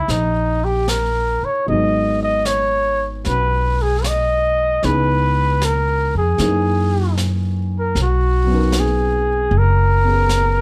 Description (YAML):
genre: jazz ballad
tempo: 77 BPM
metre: 4/4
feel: swing 69% on 8ths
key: B major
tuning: A4 = 440 Hz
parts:
  - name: trumpet with bucket mute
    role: melody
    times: 0.0-10.6 s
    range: D#4 to D#5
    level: -21 LUFS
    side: equal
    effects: none
  - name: dark baby grand piano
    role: accompaniment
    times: 0.0-10.6 s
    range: D#3 to A#4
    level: -27 LUFS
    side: equal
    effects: none
  - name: upright bass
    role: bass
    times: 0.0-10.6 s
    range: F#1 to F#2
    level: -21 LUFS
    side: equal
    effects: none
  - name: jazz brush drum kit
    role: drums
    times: 0.1-10.6 s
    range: brushed snare drum, hi-hat, snare drum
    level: -32 LUFS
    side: equal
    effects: none
room: light reverb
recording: none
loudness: -18 LUFS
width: mono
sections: 0.0-10.6 A section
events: none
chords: 0.0 D#7b9; 1.7 G#m7; 4.8 C#m7; 6.4 F#13; 8.0 Bmaj9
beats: 0.08 0.88 | 1.68 2.47 3.26 4.05 | 4.83 5.62 6.40 7.18 | 7.96 8.74 9.52 10.30